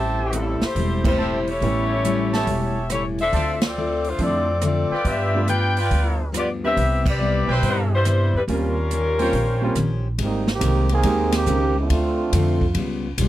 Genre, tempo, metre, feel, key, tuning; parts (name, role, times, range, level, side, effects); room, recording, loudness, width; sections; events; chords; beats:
jazz, big band swing; 140 BPM; 4/4; swing 67% on 8ths; Ab major from 10.2 s; A4 = 440 Hz
picked steel-string acoustic guitar; accompaniment; 0.0-13.3 s; G2 to C5; -28 LUFS; left 3 dB
warm trumpet section; stabs; 0.0-9.7 s; E4 to A5; -26 LUFS; right 2 dB
upright bass; bass; 0.0-13.3 s; E1 to G2; -23 LUFS; equal
clear saxophone section; melody; 0.2-10.0 s; E3 to G5; -23 LUFS; left 2 dB
swinging big-band drum kit; drums; 0.3-13.3 s; crash cymbal, hi-hat, kick drum, ride cymbal, rim click, snare drum; -27 LUFS; right 1 dB
clear concert grand piano; accompaniment; 1.0-11.7 s; F3 to G4; -26 LUFS; right 2 dB
clear trombone section; second line; 10.2-13.0 s; Eb3 to Ab4; -23 LUFS; right 4 dB; slapback echo
light reverb; dry, close 1970s-style studio recording; -18 LUFS; side -14 dB against mid
0.0-10.2 A section; 10.2-13.3 B section
band accent 1.0, 3.5, 7.0; trombone section solo 10.2-13.3
0.0 Am7; 1.6 A7; 3.3 Dm7; 5.0 G7; 6.8 Cmaj7; 8.5 Eb13; 10.2 Abmaj9; 11.9 Dm7; 12.8 Db7#11
0.34 0.76 1.19 | 1.62 2.05 2.48 2.91 | 3.33 3.76 4.19 4.62 | 5.05 5.48 5.91 6.33 | 6.76 7.19 7.62 8.05 | 8.48 8.90 9.33 9.76 | 10.19 10.62 11.05 11.47 | 11.90 12.33 12.76 13.19